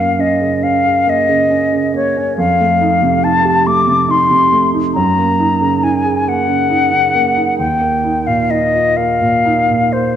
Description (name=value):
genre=classical, impressionist duo for flute and grand piano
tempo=46 BPM (dotted quarters)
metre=6/8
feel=rubato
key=unclear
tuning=A4 = 441 Hz
part: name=concert flute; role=melody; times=0.0-10.2 s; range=C5 to D6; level=-13 LUFS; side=left 3 dB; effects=none
part: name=warm concert grand piano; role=accompaniment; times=0.0-10.2 s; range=Eb2 to Ab4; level=-16 LUFS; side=right 4 dB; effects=none
room=moderate scoring stage reverb, RT60 1.7 s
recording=dark, warm production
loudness=-11 LUFS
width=side -9 dB against mid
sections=0.0-10.2 A section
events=none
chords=0.0 Gbadd9; 2.4 F9; 4.9 Gb69; 7.6 Ebsus2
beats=1.06 | 2.37 3.65 | 4.95 6.26 | 7.59 8.98